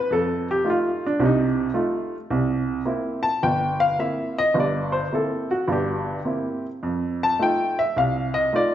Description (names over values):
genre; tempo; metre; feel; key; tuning
solo jazz; 107 BPM; 4/4; swing 67% on 8ths, rubato; C mixolydian; A4 = 440 Hz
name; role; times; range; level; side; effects
clear upright piano; solo; 0.0-8.7 s; G1 to A5; -20 LUFS; equal; none
room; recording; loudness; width
wet recital hall reverb, RT60 1.5 s; recorded in a church or concert hall, nothing above 7.8 kHz; -21 LUFS; side -11 dB against mid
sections
0.0-8.7 A section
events
upright piano solo 0.0-8.7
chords
0.1 F7; 2.3 C7; 6.8 F7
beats
| 0.11 0.66 1.21 1.76 | 2.32 2.88 3.44 4.00 | 4.55 5.11 5.67 6.25 | 6.82 7.39 7.96 8.53